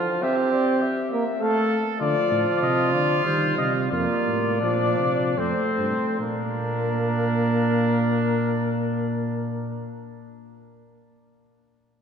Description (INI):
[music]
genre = classical, imitative canzona for brass ensemble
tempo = 70-102 BPM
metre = 3/4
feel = straight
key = Bb major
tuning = A4 = 440 Hz
[part]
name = mellow cornet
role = melody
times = 0.0-9.9 s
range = Bb4 to F5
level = -28 LUFS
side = left 7 dB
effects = none
[part]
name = warm trumpet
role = second line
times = 0.0-9.9 s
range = C4 to A4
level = -28 LUFS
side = right 3 dB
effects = none
[part]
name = mellow trombone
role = accompaniment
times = 0.0-9.9 s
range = F3 to C4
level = -25 LUFS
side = right 1 dB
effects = none
[part]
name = dark tuba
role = bass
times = 2.0-9.9 s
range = F2 to Eb3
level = -26 LUFS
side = right 2 dB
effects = none
[sound]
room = wet church reverb, RT60 3.6 s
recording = minimal, uncompressed stereo recording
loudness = -21 LUFS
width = side -7 dB against mid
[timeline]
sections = 0.0-6.2 A section; 6.2-11.4 B section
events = slowing down 1.1-6.2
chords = 0.2 C; 1.4 F/A; 2.0 Dm; 3.3 Cm/Eb; 3.9 Fsus4; 5.4 F; 6.2 Bb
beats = | 0.23 0.82 1.41 | 2.01 2.62 3.26 | 3.92 4.62 5.38 | 6.20 7.06 7.92 | 8.77 9.63